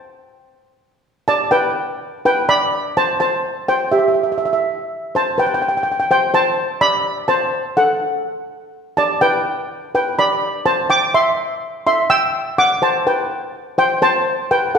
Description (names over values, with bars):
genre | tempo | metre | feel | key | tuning
calypso | 125 BPM | 4/4 | swing 54% on 16ths | G major | A4 = 440 Hz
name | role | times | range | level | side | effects
steel pan | solo | 0.0-14.8 s | G4 to E6 | -15 LUFS | equal | none
room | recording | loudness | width
wet recital hall reverb, RT60 1.7 s | recorded in a church or concert hall | -15 LUFS | side -6 dB against mid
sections
0.0-1.3 A section; 1.3-14.8 B section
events
none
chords
0.0 N.C.; 1.3 G; 3.2 C5; 5.1 Am; 7.0 D (rootless); 9.0 G; 10.9 C; 12.8 Am